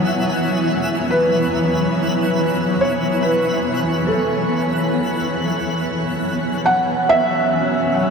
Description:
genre	ambient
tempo	71 BPM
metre	3/4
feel	straight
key	F# minor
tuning	A4 = 440 Hz
part	felt-muted upright piano	melody	0.0-8.1 s	A4 to F#5	-20 LUFS	equal	ping-pong delay
part	granular cloud pad	sustained chords	0.0-8.1 s	E3 to G#5	-20 LUFS	equal	built-in reverb
part	Celtic harp	arpeggios	0.0-8.1 s	G#3 to C#4	-35 LUFS	left 4 dB	none
part	twinkling granular texture	texture	0.0-8.1 s	E4 to F#6	-25 LUFS	right 1 dB	built-in reverb
part	organ-like drone	drone	7.1-8.1 s	F#3 to C#4	-25 LUFS	right 2 dB	ensemble chorus, built-in reverb
room	wet shimmer reverb, RT60 7.7 s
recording	none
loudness	-16 LUFS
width	side -5 dB against mid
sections	0.0-6.7 A section; 6.7-8.1 B section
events	filter sweep on ambient pad 6.7-8.1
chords	0.0 F#m11

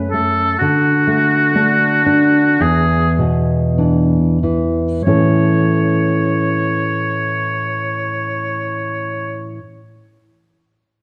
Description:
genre	romantic duo for oboe and classical guitar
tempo	44-64 BPM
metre	4/4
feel	rubato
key	A major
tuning	A4 = 440 Hz
part	nylon-string guitar	accompaniment	0.0-9.6 s	E2 to C#5	-18 LUFS	equal	none
part	clear oboe	melody	0.1-9.6 s	F#4 to C#5	-20 LUFS	equal	none
room	wet recital hall reverb, RT60 1.7 s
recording	dark, warm production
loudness	-16 LUFS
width	mono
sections	0.0-5.0 A section; 5.0-9.8 B section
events	slowing down 0.0-5.0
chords	0.0 F#m; 0.6 D; 2.6 E5; 5.0 A

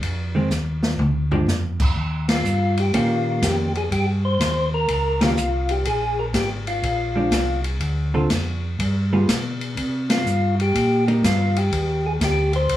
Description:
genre	soul jazz organ trio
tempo	123 BPM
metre	4/4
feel	swing 67% on 8ths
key	unclear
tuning	A4 = 440 Hz
part	mellow tonewheel organ	bass	0.0-12.8 s	Ab1 to C3	-22 LUFS	equal	slow rotary speaker
part	open jazz drum kit	drums	0.0-12.8 s	crash cymbal, hi-hat, kick drum, ride cymbal, snare drum, toms	-25 LUFS	left 1 dB	none
part	hollow-body jazz guitar	accompaniment	0.3-11.2 s	D3 to A4	-23 LUFS	right 1 dB	none
part	percussive tonewheel organ	melody	2.3-12.8 s	F4 to C5	-23 LUFS	left 1 dB	slow rotary speaker, plate reverb
room	moderate studio ambience, RT60 0.5 s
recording	none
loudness	-19 LUFS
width	side -13 dB against mid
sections	0.0-12.8 A section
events	drum fill 0.5-1.5; band accent 2.2, 5.1, 10.0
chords	0.0 Fm7; 1.0 Ddim; 2.0 Eb7; 5.9 Bb7(no3); 7.8 Dm7; 8.8 G7b9; 9.8 Cm7

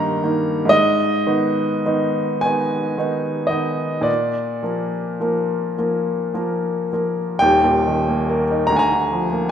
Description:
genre	classical, romantic nocturne for solo piano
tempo	33-49 BPM (dotted quarters)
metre	6/8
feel	rubato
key	Eb major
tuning	A4 = 440 Hz
part	clear baby grand piano	solo	0.0-9.5 s	Eb1 to C6	-17 LUFS	equal	none
room	moderate scoring stage reverb, RT60 1.9 s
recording	none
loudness	-17 LUFS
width	side -9 dB against mid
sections	0.0-7.4 A section; 7.4-9.5 B section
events	none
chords	0.0 Eb/G; 0.7 Abm; 4.1 Bb; 7.4 Eb; 8.7 Bb/D

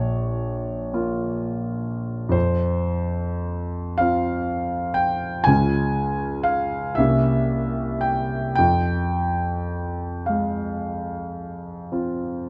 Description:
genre	classical, romantic nocturne for solo piano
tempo	34-44 BPM (dotted quarters)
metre	12/8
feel	rubato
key	F minor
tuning	A4 = 440 Hz
part	clear concert grand piano	solo	0.0-12.5 s	Bb1 to Ab5	-24 LUFS	equal	none
room	moderate recital hall reverb, RT60 1.4 s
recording	close, detailed microphones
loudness	-24 LUFS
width	mono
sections	0.0-12.5 A section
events	none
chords	0.0 Bbm; 2.3 F5; 5.5 Db; 7.0 C7b9; 8.6 Fm

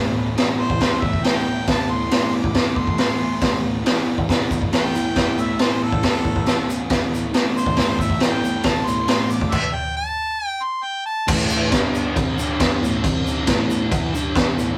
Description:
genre	garage rock duo or trio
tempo	137 BPM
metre	4/4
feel	straight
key	A minor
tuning	A4 = 440 Hz
part	fuzz guitar	riff	0.0-14.8 s	G2 to G4	-27 LUFS	equal	distortion
part	raw garage drum kit	drums	0.4-14.5 s	crash cymbal, hi-hat, kick drum, snare drum	-21 LUFS	equal	none
part	clear harmonica	melody	0.6-11.3 s	A4 to D6	-28 LUFS	equal	overdrive
part	tube shaker	percussion	4.3-14.7 s	none	-41 LUFS	equal	none
room	light reverb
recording	rough rehearsal-room recording, warm saturation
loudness	-20 LUFS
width	mono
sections	0.0-11.3 A section; 11.3-14.8 B section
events	stop 9.5-11.3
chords	0.0 A5; 11.7 G5; 12.2 C5; 12.4 G5; 12.8 A5; 13.0 C5; 13.5 A5; 14.1 G5

